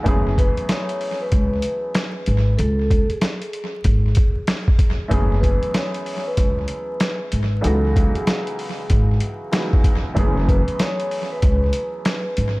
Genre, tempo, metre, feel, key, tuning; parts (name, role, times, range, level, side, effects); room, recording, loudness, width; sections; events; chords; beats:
hip hop, boom-bap hip-hop; 95 BPM; 4/4; swing 62% on 16ths; F# minor; A4 = 441 Hz
warm upright piano; accompaniment; 0.0-12.6 s; C#2 to G#4; -27 LUFS; equal; cassette tape, high-pass filter, low-pass filter
upright bass; bass; 0.1-12.6 s; F#1 to C#2; -20 LUFS; equal
trip hop sampler-style drum kit; drums; 0.1-12.6 s; hi-hat, kick drum, snare drum; -20 LUFS; equal; tape echo
vibraphone with soft mallets; melody; 0.4-12.6 s; G#4 to C#5; -27 LUFS; equal; high-pass filter, low-pass filter, tape echo
studio ambience; echo-heavy mix, vinyl crackle; -17 LUFS; side -22 dB against mid
0.0-12.6 A section
0.1 F#m11; 2.6 C#5; 5.1 F#m11; 7.6 C#m11; 10.2 F#m11
| 0.06 0.69 1.32 1.95 | 2.58 3.22 3.85 4.48 | 5.11 5.74 6.38 7.01 | 7.64 8.27 8.90 9.53 | 10.16 10.80 11.43 12.06